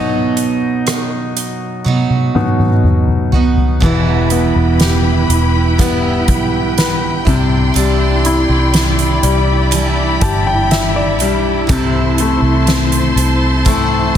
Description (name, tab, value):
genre	pop ballad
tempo	61 BPM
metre	4/4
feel	straight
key	E minor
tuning	A4 = 438 Hz
part	clear concert grand piano	accompaniment	0.0-14.2 s	B2 to A5	-18 LUFS	left 6 dB	none
part	picked steel-string acoustic guitar	arpeggios	0.0-14.2 s	E2 to F#4	-19 LUFS	right 7 dB	none
part	soft-mallet drum kit	drums	0.4-14.2 s	crash cymbal, hi-hat, kick drum, rim click, snare drum, toms	-16 LUFS	equal	none
part	warm studio string section	sustained chords	3.8-14.2 s	E4 to C6	-20 LUFS	left 1 dB	none
part	vintage muted fingered electric bass	bass	3.8-14.2 s	E1 to C2	-16 LUFS	equal	none
room	light reverb, studio reverb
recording	dense, heavily limited modern master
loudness	-11 LUFS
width	side -10 dB against mid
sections	0.0-3.8 A section; 3.8-14.2 B section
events	grand piano solo 0.0-3.8; drum fill 1.9-3.8; grand piano fill 9.7-11.7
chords	0.0 B; 3.8 Em; 7.3 Cadd9; 11.7 Am/C